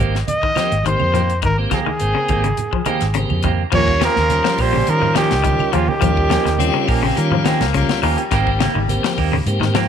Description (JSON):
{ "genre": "afrobeat", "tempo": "105 BPM", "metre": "4/4", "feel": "straight", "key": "Eb mixolydian", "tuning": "A4 = 440 Hz", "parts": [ { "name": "tonewheel organ", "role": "accompaniment", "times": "0.0-9.8 s", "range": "G3 to G5", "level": "-26 LUFS", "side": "right 1 dB", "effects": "slow rotary speaker, overdrive" }, { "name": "clean electric guitar", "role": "stabs", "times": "0.0-9.9 s", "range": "Eb3 to G4", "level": "-25 LUFS", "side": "right 12 dB", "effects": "none" }, { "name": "vintage muted fingered electric bass", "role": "bass", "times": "0.0-9.9 s", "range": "Ab1 to Eb3", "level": "-20 LUFS", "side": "equal", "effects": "none" }, { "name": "tight funk drum kit", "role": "drums", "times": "0.0-9.9 s", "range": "crash cymbal, hi-hat, kick drum, snare drum", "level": "-24 LUFS", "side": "left 4 dB", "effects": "none" }, { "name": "clear trumpet", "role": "melody", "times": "0.3-7.0 s", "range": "F4 to Eb5", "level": "-20 LUFS", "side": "equal", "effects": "none" }, { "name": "congas", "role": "percussion", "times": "0.3-9.9 s", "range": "none", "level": "-26 LUFS", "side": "right 7 dB", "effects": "none" }, { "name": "clean electric guitar", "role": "arpeggios", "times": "0.4-9.9 s", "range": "Db3 to F3", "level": "-24 LUFS", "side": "left 10 dB", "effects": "tremolo" }, { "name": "claves", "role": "percussion", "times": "0.6-9.9 s", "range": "none", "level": "-32 LUFS", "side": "left 15 dB", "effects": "none" }, { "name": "raspy tenor saxophone", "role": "second line", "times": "3.8-7.0 s", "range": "Db3 to Bb3", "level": "-24 LUFS", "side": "right 13 dB", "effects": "slapback echo" }, { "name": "raspy baritone saxophone", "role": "second line", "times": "6.6-9.3 s", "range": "G3 to C4", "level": "-23 LUFS", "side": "left 12 dB", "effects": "none" } ], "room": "light reverb, studio reverb", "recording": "1960s-style stereo with parts hard left and right", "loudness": "-15 LUFS", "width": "side -8 dB against mid", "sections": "0.0-3.7 A section; 3.7-9.9 B section", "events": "none", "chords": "0.0 Abmaj9; 3.7 Eb9; 8.3 Abmaj9", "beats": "0.28 0.86 | 1.43 2.01 2.58 3.16 | 3.73 4.30 4.88 5.45 | 6.03 6.60 7.17 7.74 | 8.32 8.89 9.46" }